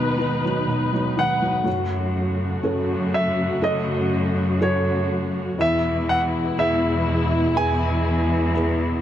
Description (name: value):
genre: pop ballad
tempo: 61 BPM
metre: 4/4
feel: straight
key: unclear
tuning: A4 = 440 Hz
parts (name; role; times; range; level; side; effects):
- clear concert grand piano; melody; 0.0-9.0 s; C#5 to G#5; -25 LUFS; equal; none
- felt-muted upright piano; accompaniment; 0.0-9.0 s; D#2 to B4; -26 LUFS; right 1 dB; none
- dark studio string section; sustained chords; 0.0-9.0 s; B2 to B4; -25 LUFS; left 2 dB; none
- muted studio cello section; bass; 1.7-9.0 s; E2 to F#2; -24 LUFS; equal; none
room: moderate plate reverb, RT60 3.2 s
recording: dark, warm production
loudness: -19 LUFS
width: side -11 dB against mid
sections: 0.0-1.7 A section; 1.7-9.0 B section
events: none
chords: 0.0 B6/D#; 1.7 F#m; 5.6 E